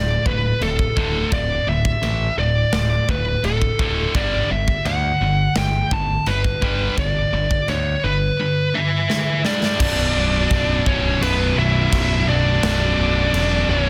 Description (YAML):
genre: heavy metal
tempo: 85 BPM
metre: 4/4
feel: straight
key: B minor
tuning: A4 = 442 Hz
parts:
  - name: high-gain lead guitar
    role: melody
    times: 0.0-13.9 s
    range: A4 to A5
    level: -24 LUFS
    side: equal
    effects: distortion
  - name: distorted electric guitar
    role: riff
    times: 0.0-13.9 s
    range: B1 to G3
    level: -27 LUFS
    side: equal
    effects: overdrive
  - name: scooped high-gain guitar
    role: riff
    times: 0.0-13.9 s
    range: D2 to D4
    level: -29 LUFS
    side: equal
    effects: none
  - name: overdriven picked electric bass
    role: bass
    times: 0.0-13.9 s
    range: B0 to D2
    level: -25 LUFS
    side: equal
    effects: none
  - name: big rock drum kit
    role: drums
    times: 0.3-13.5 s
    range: china cymbal, crash cymbal, kick drum, snare drum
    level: -27 LUFS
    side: equal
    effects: none
  - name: high-gain lead guitar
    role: second line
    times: 8.7-13.9 s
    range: B3 to E4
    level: -32 LUFS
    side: equal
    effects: none
  - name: dark studio string section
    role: sustained chords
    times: 9.8-13.9 s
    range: D3 to F#4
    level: -38 LUFS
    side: equal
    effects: none
  - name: fuzz guitar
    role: riff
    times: 9.8-13.9 s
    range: B1 to D4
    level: -29 LUFS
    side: equal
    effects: distortion
room: small room ambience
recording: dense, heavily limited modern master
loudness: -19 LUFS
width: mono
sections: 0.0-9.8 A section; 9.8-13.9 B section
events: drum fill 9.1-9.8; half time 9.8-13.9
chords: 0.0 D5; 4.2 G; 9.8 Bm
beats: 0.61 | 1.32 2.03 2.73 3.44 | 4.15 4.86 5.56 6.27 | 6.98 7.68 8.39 9.10 | 9.80 10.51 11.22 11.92 | 12.63 13.34